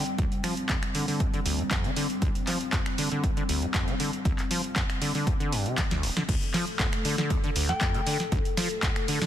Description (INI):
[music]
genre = acid house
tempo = 118 BPM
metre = 4/4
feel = straight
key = D minor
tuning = A4 = 439 Hz
[part]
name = soft synth bell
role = melody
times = 0.0-0.1, 7.7-8.2 s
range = G5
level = -35 LUFS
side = left 2 dB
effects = chorus, ping-pong delay
[part]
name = dark analog pad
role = sustained chords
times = 0.0-9.3 s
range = G3 to A4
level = -34 LUFS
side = left 1 dB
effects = chorus, sidechain pumping
[part]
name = acid bass, saw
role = riff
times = 0.0-9.3 s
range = D1 to F3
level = -30 LUFS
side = equal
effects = overdrive, analog chorus, sidechain pumping, dub echo
[part]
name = booming analog drum machine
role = drums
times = 0.1-9.3 s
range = crash cymbal, finger snaps, handclaps, hi-hat, snare drum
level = -31 LUFS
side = equal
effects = none
[part]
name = electronic kick drum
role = drums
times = 0.2-8.9 s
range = none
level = -29 LUFS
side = equal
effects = none
[sound]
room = light reverb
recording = dense, heavily limited modern master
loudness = -25 LUFS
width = side -11 dB against mid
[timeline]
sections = 0.0-6.3 A section; 6.3-9.3 B section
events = drum fill 5.8-6.3; drop 6.3-9.3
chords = 0.0 Dm7; 6.3 Dm